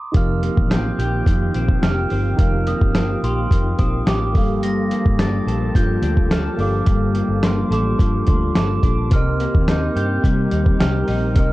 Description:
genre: indie pop, bedroom pop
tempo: 107 BPM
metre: 4/4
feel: straight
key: unclear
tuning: A4 = 438 Hz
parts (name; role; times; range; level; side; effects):
- glockenspiel with rubber mallets; melody; 0.0-11.5 s; C6 to Bb6; -28 LUFS; right 2 dB; lush chorus
- electric guitar through a small old amp; accompaniment; 0.1-11.5 s; F2 to A4; -24 LUFS; left 2 dB; analog chorus, vibrato effect
- overdriven tine electric piano; accompaniment; 0.1-11.5 s; Bb3 to F5; -28 LUFS; right 3 dB; none
- warm analog pad; sustained chords; 0.1-11.5 s; Eb3 to Bb4; -30 LUFS; equal; chorus
- vintage muted fingered electric bass; bass; 0.1-11.5 s; F1 to C3; -22 LUFS; equal; none
- dusty soul sampler-style drum kit; drums; 0.1-11.5 s; hi-hat, kick drum, snare drum; -18 LUFS; equal; overdrive, vintage 12-bit sampler grit
room: light reverb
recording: cassette tape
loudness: -16 LUFS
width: side -18 dB against mid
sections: 0.1-11.5 A section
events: none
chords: 0.1 F9sus4; 4.3 Gm9; 9.1 Cm7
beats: | 0.14 0.70 1.26 1.83 | 2.39 2.95 3.51 4.07 | 4.63 5.19 5.75 6.31 | 6.87 7.43 7.99 8.55 | 9.12 9.68 10.24 10.80 | 11.36

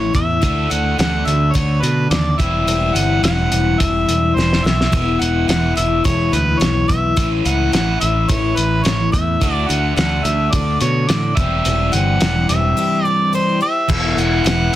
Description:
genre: folk rock and heartland rock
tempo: 107 BPM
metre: 4/4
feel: straight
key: unclear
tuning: A4 = 439 Hz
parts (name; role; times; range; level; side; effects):
- mellow harmonica; melody; 0.0-14.8 s; B4 to F#5; -20 LUFS; right 1 dB; none
- picked twelve-string acoustic guitar; accompaniment; 0.0-14.8 s; E2 to G4; -24 LUFS; left 7 dB; none
- overdriven semi-hollow guitar; riff; 0.0-14.8 s; E2 to G4; -22 LUFS; equal; none
- picked electric bass; bass; 0.0-14.7 s; E1 to B2; -20 LUFS; right 1 dB; none
- cloth-damped thuddy drum kit; drums; 0.1-14.6 s; crash cymbal, hi-hat, kick drum, snare drum; -20 LUFS; equal; none
room: light reverb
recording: dense, heavily limited modern master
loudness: -14 LUFS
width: side -13 dB against mid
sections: 0.0-13.9 A section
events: drum fill 4.4-4.9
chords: 0.4 D; 2.4 C/E; 4.9 E; 7.2 A; 9.4 D; 11.4 C/E; 13.9 E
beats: | 0.43 0.99 1.55 2.12 | 2.68 3.24 3.80 4.36 | 4.92 5.49 6.05 6.61 | 7.17 7.73 8.29 8.85 | 9.41 9.97 10.53 11.09 | 11.65 12.21 12.77 13.34 | 13.90 14.46

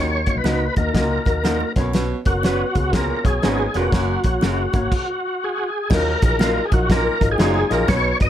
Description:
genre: uptempo 1960s-style soul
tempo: 121 BPM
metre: 4/4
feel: swing 64% on 8ths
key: unclear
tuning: A4 = 438 Hz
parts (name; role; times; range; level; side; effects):
- overdriven tonewheel organ; melody; 0.0-8.3 s; F#4 to D#5; -22 LUFS; left 1 dB; chorus vibrato, fast rotary speaker
- dark upright piano; accompaniment; 0.0-8.3 s; F#3 to D#5; -25 LUFS; left 3 dB; none
- warm baritone saxophone; riff; 0.0-8.1 s; D#2 to B2; -27 LUFS; right 4 dB; none
- vintage muted fingered electric bass; bass; 0.0-8.3 s; E#1 to D#2; -24 LUFS; equal; none
- warm soul drum kit; drums; 0.3-8.3 s; crash cymbal, hi-hat, kick drum, snare drum; -21 LUFS; equal; none
- electric guitar through a small old amp; stabs; 0.4-7.6 s; F#3 to B4; -27 LUFS; right 3 dB; none
- congas; percussion; 0.4-8.0 s; none; -33 LUFS; right 3 dB; none
room: little or no reverb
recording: none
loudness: -17 LUFS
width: side -11 dB against mid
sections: 0.0-5.9 A section; 5.9-8.3 B section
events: stop 4.9-5.9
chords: 0.0 D#m; 1.7 Bsus2; 3.9 F#; 5.9 D#madd9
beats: 0.45 0.95 1.44 | 1.94 2.44 2.94 3.43 | 3.93 4.42 4.92 5.42 | 5.91 6.41 6.90 7.40 | 7.89

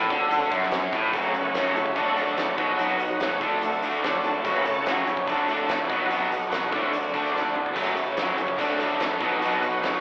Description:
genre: classic rock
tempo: 145 BPM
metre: 4/4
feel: straight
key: F# minor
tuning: A4 = 440 Hz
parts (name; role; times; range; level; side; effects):
- bright tonewheel organ; sustained chords; 0.0-10.0 s; F#3 to C#5; -30 LUFS; equal; slow rotary speaker, chorus vibrato
- biting overdriven guitar; riff; 0.0-1.1, 7.7-10.0 s; F#2 to D4; -32 LUFS; equal; none
- cranked stack guitar; riff; 0.0-10.0 s; F#2 to D4; -27 LUFS; left 1 dB; overdrive
- crunchy overdriven guitar; riff; 0.0-10.0 s; F#2 to F#4; -26 LUFS; right 1 dB; none
- fuzz fingered electric bass; bass; 0.0-9.9 s; F#1 to F#3; -36 LUFS; equal; overdrive
- huge arena drum kit; drums; 0.1-9.9 s; hi-hat, kick drum, snare drum, splash cymbal, toms; -31 LUFS; equal; none
room: moderate large studio reverb, RT60 1.0 s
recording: band playing live in one room, telephone sound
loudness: -22 LUFS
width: side -27 dB against mid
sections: 0.0-1.1 A section; 1.1-10.0 B section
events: drum fill 7.3-7.8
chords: 0.0 F#m; 2.0 D; 2.6 B; 3.4 D; 4.5 F#m; 5.3 D; 5.9 B; 6.7 D; 7.8 F#m; 8.6 D; 9.2 B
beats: 0.31 0.73 | 1.14 1.55 1.97 2.38 | 2.80 3.21 3.62 4.04 | 4.45 4.87 5.28 5.69 | 6.11 6.52 6.93 7.34 | 7.76 8.17 8.58 9.00 | 9.41 9.82

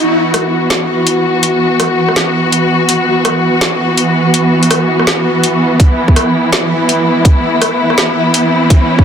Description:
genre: half-time drum and bass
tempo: 165 BPM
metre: 4/4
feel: swing 57% on 16ths, half-time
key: unclear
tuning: A4 = 441 Hz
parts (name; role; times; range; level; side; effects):
- muted studio string section; sustained chords; 0.0-9.0 s; E3 to F#4; -11 LUFS; equal; sidechain pumping
- drum and bass drum kit; drums; 0.3-8.8 s; hi-hat, rim click, snare drum; -16 LUFS; equal; high-pass filter on hats, soft clipping on snare, high-pass filter on snare, high-pass filter on room
- electronic kick drum; drums; 5.8-9.0 s; none; -8 LUFS; equal; none
- riser; sound effects; 7.4-9.0 s; none; -20 LUFS; equal; none
room: light reverb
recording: dense, heavily limited modern master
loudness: -9 LUFS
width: side -8 dB against mid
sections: 0.0-9.0 A section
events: build-up 0.0-9.0; riser 7.4-9.0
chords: 0.0 Esus2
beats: 0.34 0.71 1.07 | 1.44 1.80 2.16 2.53 | 2.89 3.25 3.62 3.98 | 4.34 4.71 5.07 5.44 | 5.80 6.16 6.53 6.89 | 7.25 7.62 7.98 8.35 | 8.71

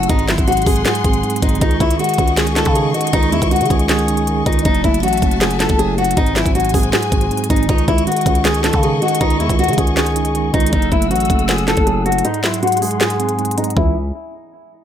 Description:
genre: hip hop, trap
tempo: 158 BPM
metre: 4/4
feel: half-time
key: C# harmonic minor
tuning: A4 = 440 Hz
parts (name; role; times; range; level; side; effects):
- fingerpicked steel-string acoustic guitar; melody; 0.0-13.9 s; D#4 to A4; -18 LUFS; left 2 dB; low-pass filter, ping-pong delay
- mellow tine electric piano; accompaniment; 0.0-13.9 s; G#2 to D#5; -21 LUFS; right 4 dB; medium stereo tremolo, low-pass filter
- warm symphonic string section; sustained chords; 0.0-13.9 s; C#4 to E6; -27 LUFS; left 2 dB; low-pass filter
- growling 808-style bass; bass; 0.0-14.1 s; F#1 to C#3; -20 LUFS; equal; none
- trap drum kit; drums; 0.0-13.9 s; handclaps, hi-hat, kick drum, snare drum, toms; -18 LUFS; equal; none
room: little or no reverb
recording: none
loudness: -13 LUFS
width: side -10 dB against mid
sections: 0.0-7.7 A section; 7.7-13.8 B section; 13.8-14.8 C section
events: filter sweep 7.7-13.8; break 12.2-13.8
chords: 0.1 G#7; 1.6 C#sus2; 4.7 F#m7; 6.2 G#7; 7.7 C#sus2; 10.7 F#m7; 12.2 G#7; 13.8 C#m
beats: | 0.10 0.47 0.85 1.24 | 1.61 1.99 2.37 2.75 | 3.13 3.51 3.89 4.27 | 4.65 5.03 5.41 5.79 | 6.17 6.55 6.93 7.31 | 7.69 8.07 8.45 8.83 | 9.21 9.59 9.97 10.35 | 10.73 11.11 11.49 11.87 | 12.25 12.63 13.01 13.39 | 13.77

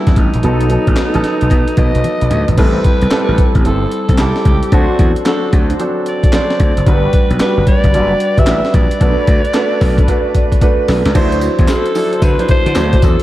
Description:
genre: R&B, new jack swing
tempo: 112 BPM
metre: 4/4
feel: swing 64% on 16ths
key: unclear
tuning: A4 = 438 Hz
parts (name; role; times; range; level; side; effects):
- growling alto saxophone; melody; 0.0-13.2 s; D#4 to E5; -19 LUFS; equal; tape echo
- warm grand piano; accompaniment; 0.0-13.2 s; F#3 to D5; -17 LUFS; right 1 dB; none
- gritty slap bass; bass; 0.1-13.2 s; F#1 to D3; -16 LUFS; equal; overdrive
- breakbeat sampler-style drum kit; drums; 0.1-13.2 s; crash cymbal, handclaps, hi-hat, kick drum, snare drum, tambourine, toms; -13 LUFS; equal; none
- mellow synth brass; stabs; 0.4-12.8 s; B3 to C5; -24 LUFS; equal; none
room: moderate church reverb, RT60 2.6 s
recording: dreamy mix soaked in reverb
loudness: -10 LUFS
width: side -15 dB against mid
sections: 0.0-2.6 A section; 2.6-11.1 B section; 11.1-13.2 C section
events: drum fill 2.0-2.6, 10.1-11.1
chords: 0.4 B7; 2.6 Am7; 4.7 D7; 6.9 Gmaj7; 9.0 Bm7; 11.1 D9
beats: | 0.43 0.97 1.50 2.04 | 2.58 3.11 3.65 4.18 | 4.72 5.25 5.79 6.33 | 6.86 7.40 7.93 8.47 | 9.01 9.54 10.08 10.61 | 11.15 11.68 12.22 12.76

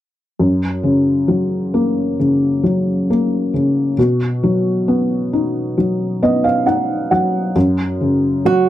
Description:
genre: pop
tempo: 67 BPM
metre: 4/4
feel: straight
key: F# major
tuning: A4 = 440 Hz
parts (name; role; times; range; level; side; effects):
- felt-muted upright piano; accompaniment; 0.4-8.7 s; F#2 to F#5; -14 LUFS; left 1 dB; none
- flamenco guitar; melody; 8.5-8.7 s; F#4; -12 LUFS; right 7 dB; none
room: light reverb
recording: dry, close 1970s-style studio recording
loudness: -14 LUFS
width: side -13 dB against mid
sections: 0.4-7.6 A section; 7.6-8.7 B section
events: felt piano fill 5.8-7.6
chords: 0.4 F#; 4.0 B; 7.6 F#5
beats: | 0.39 1.28 2.18 3.08 | 3.97 4.87 5.76 6.66 | 7.55 8.45

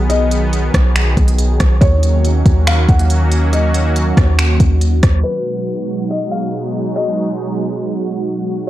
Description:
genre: hip hop, atmospheric cloud-rap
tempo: 140 BPM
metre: 4/4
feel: half-time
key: G# dorian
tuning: A4 = 440 Hz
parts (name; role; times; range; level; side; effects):
- felt-muted upright piano; melody; 0.0-8.7 s; B4 to F#5; -22 LUFS; left 2 dB; tape echo
- sweeping resonant pad; sustained chords; 0.0-8.7 s; B2 to G#4; -19 LUFS; right 1 dB; chorus, sidechain pumping
- warm 808-style bass; bass; 0.0-5.2 s; B1 to D#2; -13 LUFS; equal; none
- smooth R&B drum kit; drums; 0.1-5.1 s; finger snaps, hi-hat, kick drum, rim click; -15 LUFS; equal; none
room: digital ambience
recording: dark, warm production, low-pass filter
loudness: -12 LUFS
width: side -14 dB against mid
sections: 0.0-5.2 A section; 5.2-8.7 B section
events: none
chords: 0.0 B; 1.8 D#m7; 5.2 G#m7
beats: | 0.10 0.53 0.96 1.39 | 1.81 2.24 2.67 3.10 | 3.53 3.96 4.39 4.82 | 5.24 5.67 6.10 6.53 | 6.96 7.39 7.82 8.24 | 8.67

